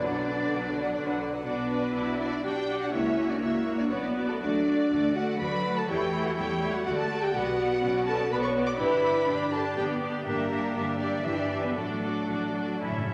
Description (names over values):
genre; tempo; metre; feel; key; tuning
quick classical-period movement for symphony orchestra; 122 BPM; 3/4; uneven beats, rubato; B minor, D major from 7.3 s; A4 = 440 Hz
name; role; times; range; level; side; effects
rich chamber violin section; melody; 0.0-13.1 s; C#5 to E5; -40 LUFS; equal; none
dark clarinet; second line; 0.0-1.2 s; B4; -44 LUFS; equal; none
mellow small flute group; second line; 0.0-1.1 s; D5; -38 LUFS; equal; none
rich chamber violin section; second line; 0.0-13.1 s; A4 to D6; -37 LUFS; equal; none
rich chamber viola section; accompaniment; 0.0-13.1 s; D3 to G4; -34 LUFS; equal; none
mellow French horn section; sustained chords; 0.0-13.1 s; A3 to D5; -32 LUFS; equal; none
rich chamber double bass section; bass; 0.0-13.1 s; G1 to E2; -41 LUFS; equal; none
rich symphonic cello section; bass; 0.0-13.1 s; E3 to E4; -37 LUFS; equal; none
timpani; percussion; 12.8-13.1 s; A2; -35 LUFS; equal; none
room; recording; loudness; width
wet scoring stage reverb, RT60 1.5 s; none; -28 LUFS; mono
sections
0.0-1.4 A section; 1.4-13.1 A section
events
timpani fill 12.8-13.1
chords
0.0 Bm; 2.9 F#/C#; 3.9 Bm; 4.4 D; 5.9 A7/E; 6.9 D; 7.3 Bm; 8.8 G; 10.3 Em7b5/G; 11.8 D/A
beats
0.41 0.92 | 1.44 1.94 2.44 | 2.93 3.42 3.91 | 4.42 4.91 5.40 | 5.89 6.37 6.86 | 7.34 7.82 8.31 | 8.79 9.28 9.76 | 10.25 10.74 11.25 | 11.77 12.30 12.82